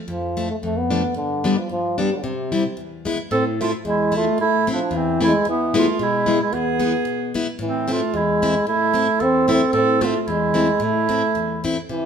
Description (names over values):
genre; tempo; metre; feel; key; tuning
alpine folk, alpine dance band; 112 BPM; 2/4; swing 54% on 8ths; A harmonic minor from 3.3 s; A4 = 440 Hz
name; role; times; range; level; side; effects
warm euphonium; melody; 0.1-12.1 s; C3 to C4; -21 LUFS; right 1 dB; none
picked plugged-in steel-string acoustic guitar; accompaniment; 0.1-12.1 s; E2 to E4; -23 LUFS; left 3 dB; none
clear clarinet; second line; 3.3-11.7 s; B3 to A4; -22 LUFS; right 4 dB; none
room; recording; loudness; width
moderate large studio reverb, RT60 1.2 s; band playing live in one room; -18 LUFS; side -7 dB against mid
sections
0.0-3.3 A section; 3.3-11.9 B section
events
none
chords
0.1 Dm/F; 1.2 G; 2.2 C; 2.8 E; 3.3 Am; 5.5 E; 7.6 Am